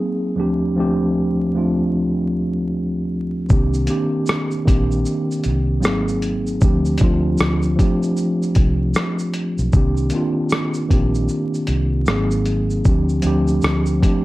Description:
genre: lo-fi hip hop.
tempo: 77 BPM.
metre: 4/4.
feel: swing 62% on 16ths.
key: C dorian.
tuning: A4 = 440 Hz.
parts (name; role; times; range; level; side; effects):
mellow tine electric piano; accompaniment; 0.0-14.2 s; D2 to Ab4; -19 LUFS; equal; medium stereo tremolo, low-pass filter.
vintage muted fingered electric bass; bass; 3.5-14.0 s; Ab1 to D2; -20 LUFS; equal; none.
lo-fi sampler-style drum kit; drums; 3.5-14.2 s; hi-hat, kick drum, rim click, shaker; -18 LUFS; equal; overdrive.
room: moderate studio reverb, RT60 0.6 s.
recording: vinyl crackle.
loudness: -16 LUFS.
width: side -18 dB against mid.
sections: 0.0-14.2 A section.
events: none.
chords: 0.4 G9sus4/D; 3.5 Cm7; 5.8 Ab9; 6.6 G9sus4/D; 9.7 Cm7; 12.1 Ab9; 12.8 G9sus4/D.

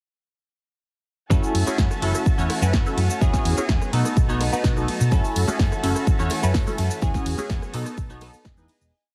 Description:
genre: filtered disco house.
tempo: 126 BPM.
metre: 4/4.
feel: straight.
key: F# dorian.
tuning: A4 = 436 Hz.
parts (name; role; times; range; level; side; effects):
funky polysynth comp; accompaniment; 1.3-8.7 s; B3 to C#5; -30 LUFS; equal; chorus, phaser, vintage 12-bit sampler grit, sidechain pumping.
muted studio violin section; sustained chords; 1.3-8.9 s; D#4 to A5; -35 LUFS; equal; sidechain pumping.
direct-recorded clean electric guitar; riff; 1.3-8.9 s; E3 to A4; -34 LUFS; equal; vintage 12-bit sampler grit, sidechain pumping.
hollow-body short-scale fingered electric bass; bass; 1.3-8.9 s; E1 to B2; -26 LUFS; equal; sidechain pumping.
electronic kick drum; drums; 1.3-8.6 s; none; -24 LUFS; equal; small room ambience.
punchy analog drum machine; drums; 1.3-8.9 s; cabasa, hi-hat, ride cymbal, rim click, snare drum; -32 LUFS; equal; sidechain pumping on perc, small room ambience, sidechain pumping on hats, sidechain pumping on cymbals.
tambourine and congas; percussion; 5.1-8.9 s; none; -39 LUFS; equal; none.
room: little or no reverb.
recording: heavily compressed radio sound.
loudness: -22 LUFS.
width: mono.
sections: 1.3-8.9 drop.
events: drop 1.3-8.9; fade-out 6.4-8.9.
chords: 1.3 F#m7; 3.2 E69; 3.9 B7; 5.1 F#m7; 7.0 E69; 7.7 B7; 8.5 Emaj7.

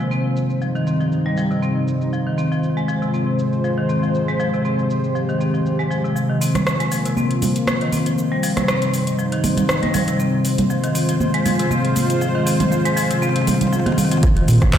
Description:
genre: afro house.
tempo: 119 BPM.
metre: 4/4.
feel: swing 54% on 16ths.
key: F minor.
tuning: A4 = 440 Hz.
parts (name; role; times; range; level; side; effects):
dark analog pad; sustained chords; 0.0-14.8 s; G3 to C5; -24 LUFS; left 1 dB; chorus, sidechain pumping.
marimba with hard mallets; arpeggios; 0.0-14.7 s; C3 to C4; -19 LUFS; equal; sidechain pumping, low-pass filter, digital delay.
afro-pop drum kit; drums; 0.0-14.8 s; cabasa, handclaps, hi-hat, rim click, toms; -26 LUFS; equal; high-pass filter on perc, low-pass filter on perc, studio reverb, high-pass filter on toms, low-pass filter on toms, high-pass filter on hats, low-pass filter on hats, high-pass filter on snare, low-pass filter on snare.
congas; percussion; 6.5-14.1 s; none; -23 LUFS; right 3 dB; none.
warm sub bass; bass; 14.2-14.6 s; Bb1 to Bb2; -14 LUFS; right 1 dB; sidechain pumping.
electronic kick drum; drums; 14.2-14.8 s; none; -16 LUFS; right 1 dB; studio reverb.
room: moderate lush hall reverb, RT60 2.1 s.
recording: played on a big sound system in a bare room, large studio reverb.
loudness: -17 LUFS.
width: side -9 dB against mid.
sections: 0.0-6.2 A section; 6.2-14.2 B section.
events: build-up 6.2-14.2; drum fill 6.2-14.2.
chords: 0.1 Cm; 2.1 Fm; 6.2 Bbsus2; 8.2 Cm; 10.2 Fm; 14.2 Bbsus2.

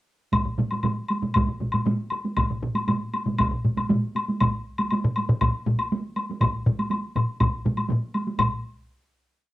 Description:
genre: japanese traditional, taiko drum ensemble.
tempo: 119 BPM.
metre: 4/4.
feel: straight.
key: none.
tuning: none.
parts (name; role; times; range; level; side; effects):
solo taiko drums; percussion; 0.3-8.8 s; none; -29 LUFS; right 2 dB; none.
taiko ensemble; percussion; 0.3-8.6 s; none; -27 LUFS; right 2 dB; none.
taiko ensemble; percussion; 0.3-8.8 s; none; -27 LUFS; left 1 dB; none.
taiko ensemble; percussion; 0.3-8.6 s; none; -30 LUFS; equal; none.
woodblock; percussion; 0.3-8.6 s; none; -28 LUFS; left 3 dB; none.
room: moderate studio reverb, RT60 0.6 s.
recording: home recording on cassette.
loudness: -22 LUFS.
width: side -16 dB against mid.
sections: 0.3-8.4 A section; 8.4-9.5 final hit.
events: speeding up 0.3-9.5.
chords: none.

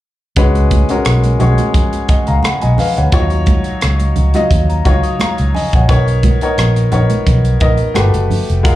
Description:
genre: lush 1970s-style soul.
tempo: 87 BPM.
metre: 4/4.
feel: swing 54% on 16ths.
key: unclear.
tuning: A4 = 440 Hz.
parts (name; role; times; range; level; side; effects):
clear concert grand piano; accompaniment; 0.4-8.8 s; E#3 to B5; -17 LUFS; left 2 dB; plate reverb.
vintage muted fingered electric bass; bass; 0.4-8.8 s; E#1 to D#2; -13 LUFS; equal; none.
tight funk drum kit; drums; 0.4-8.8 s; hi-hat, kick drum, rim click; -16 LUFS; equal; none.
congas; percussion; 0.6-8.5 s; none; -22 LUFS; right 4 dB; slapback echo.
large celesta; texture; 4.7-5.8 s; A#5 to D#6; -29 LUFS; left 2 dB; plate reverb.
room: light reverb.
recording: live gig heard through the venue's PA, club reverb.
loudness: -11 LUFS.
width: side -15 dB against mid.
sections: 0.4-8.8 A section.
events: none.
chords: 0.4 C#7sus4; 3.1 D#m9; 5.9 Bmaj9; 8.0 Gmaj9.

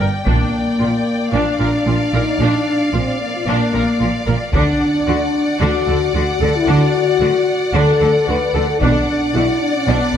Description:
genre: cinematic, epic orchestral film score.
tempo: 112 BPM.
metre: 4/4.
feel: straight.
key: unclear.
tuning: A4 = 440 Hz.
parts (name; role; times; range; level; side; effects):
clear symphonic violin section; melody; 0.0-10.2 s; F5 to G5; -26 LUFS; left 3 dB; none.
clear studio violin section; second line; 0.0-10.2 s; D5; -24 LUFS; left 2 dB; none.
clear symphonic viola section; accompaniment; 0.0-10.2 s; D4 to Bb4; -24 LUFS; right 1 dB; none.
bright symphonic cello section; bass; 0.0-10.0 s; Bb2 to D3; -22 LUFS; right 2 dB; none.
rich symphonic double bass section; bass; 0.0-10.2 s; Bb1 to D2; -21 LUFS; right 2 dB; none.
dark French horn section; sustained chords; 0.3-10.2 s; Bb3 to B4; -18 LUFS; left 3 dB; none.
taiko ensemble; drums; 0.3-1.3, 4.5-5.6, 8.8-9.8 s; none; -21 LUFS; equal; none.
room: moderate scoring stage reverb, RT60 1.8 s.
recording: none.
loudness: -14 LUFS.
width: side -9 dB against mid.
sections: 0.0-10.2 A section.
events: none.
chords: 0.3 Bb; 4.5 D; 8.8 Bm.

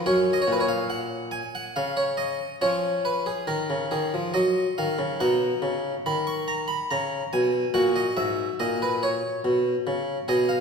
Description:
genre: classical, baroque-style suite movement for harpsichord.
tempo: 70 BPM.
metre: 3/4.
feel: rubato.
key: F# major.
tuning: A4 = 440 Hz.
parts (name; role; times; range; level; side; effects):
harpsichord; solo; 0.0-10.6 s; F#2 to C#6; -23 LUFS; equal; none.
room: wet scoring stage reverb, RT60 1.5 s.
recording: heard from further back in the room.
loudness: -23 LUFS.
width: side -5 dB against mid.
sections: 0.1-10.6 A section.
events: none.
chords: 0.1 F#; 2.6 C#/E#; 4.3 F#5; 5.2 B; 7.8 F#; 9.4 Bsus2.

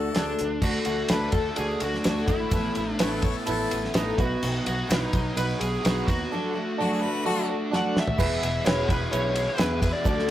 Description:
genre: folk rock and heartland rock.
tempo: 127 BPM.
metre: 4/4.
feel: straight.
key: E mixolydian.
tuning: A4 = 440 Hz.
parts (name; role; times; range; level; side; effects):
smooth overdriven lead guitar; melody; 0.0-10.3 s; D4 to F#5; -31 LUFS; equal; none.
bright harmonica; second line; 0.0-3.8, 6.8-7.5 s; F#4 to C#5; -32 LUFS; left 4 dB; none.
bright upright piano; accompaniment; 0.0-10.3 s; B3 to D5; -32 LUFS; right 4 dB; none.
picked twelve-string acoustic guitar; accompaniment; 0.0-10.3 s; E2 to G#4; -30 LUFS; left 3 dB; none.
overdriven electric guitar; riff; 0.0-10.3 s; E2 to F#4; -34 LUFS; right 2 dB; tremolo.
picked electric bass; bass; 0.0-10.3 s; E1 to E2; -32 LUFS; equal; none.
cloth-damped thuddy drum kit; drums; 0.1-10.2 s; crash cymbal, hi-hat, kick drum, ride cymbal, snare drum, toms; -27 LUFS; equal; none.
bright tonewheel organ; sustained chords; 0.6-10.3 s; A4 to E6; -43 LUFS; right 2 dB; none.
egg shaker; percussion; 0.6-10.2 s; none; -50 LUFS; left 8 dB; none.
room: light reverb.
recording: rough rehearsal-room recording.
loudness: -23 LUFS.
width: side -12 dB against mid.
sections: 0.6-8.2 A section; 8.2-10.3 B section.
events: drum fill 7.7-8.2.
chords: 0.0 D; 2.5 Asus2; 4.2 B; 6.3 D; 8.2 E.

